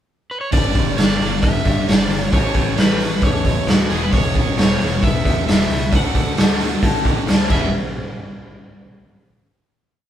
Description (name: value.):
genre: classic rock.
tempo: 134 BPM.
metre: 4/4.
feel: straight.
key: unclear.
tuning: A4 = 439 Hz.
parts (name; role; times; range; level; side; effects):
overdriven slide guitar; melody; 0.3-7.7 s; F#4 to F#5; -25 LUFS; right 1 dB; slapback echo.
picked twelve-string acoustic guitar; accompaniment; 0.5-7.7 s; E2 to A4; -32 LUFS; left 5 dB; none.
crunchy overdriven guitar; riff; 0.5-7.7 s; E2 to D4; -28 LUFS; left 10 dB; spring reverb.
distorted electric guitar; riff; 0.5-7.7 s; E2 to A4; -26 LUFS; right 7 dB; overdrive.
modern bright picked electric bass; bass; 0.5-7.7 s; E1 to A2; -25 LUFS; equal; none.
raw garage drum kit; drums; 0.5-7.6 s; crash cymbal, hi-hat, kick drum, snare drum; -17 LUFS; equal; none.
room: light reverb.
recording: band playing live in one room.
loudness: -15 LUFS.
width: side -10 dB against mid.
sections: 0.0-0.5 pickup bar; 0.5-7.7 pre-chorus; 7.7-9.5 final hit.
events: none.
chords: 0.0 N.C.; 0.5 G; 2.3 A; 3.9 E; 5.9 D; 7.5 E; 7.7 N.C..